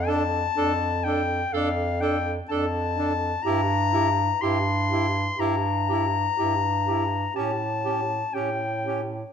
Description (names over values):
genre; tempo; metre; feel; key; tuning
classical, lyrical piece for single-reed quartet; 62 BPM; 4/4; rubato; D minor; A4 = 440 Hz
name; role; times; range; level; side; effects
bright clarinet; melody; 0.0-9.1 s; F5 to C6; -26 LUFS; left 7 dB; none
clear bass clarinet; bass; 0.0-9.2 s; F2 to A2; -27 LUFS; right 2 dB; none
clear alto saxophone; second line; 0.1-9.0 s; G4 to A4; -31 LUFS; right 7 dB; none
warm tenor saxophone; accompaniment; 0.1-9.0 s; C#4 to E4; -31 LUFS; left 1 dB; none
room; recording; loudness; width
wet stone room reverb, RT60 1.2 s; dark, warm production; -22 LUFS; side -7 dB against mid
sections
0.0-9.3 A section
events
none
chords
0.0 Dm/F; 3.4 Edim/G; 7.4 A7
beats
0.56 1.53 2.49 | 3.45 4.41 5.39 6.38 | 7.36 8.34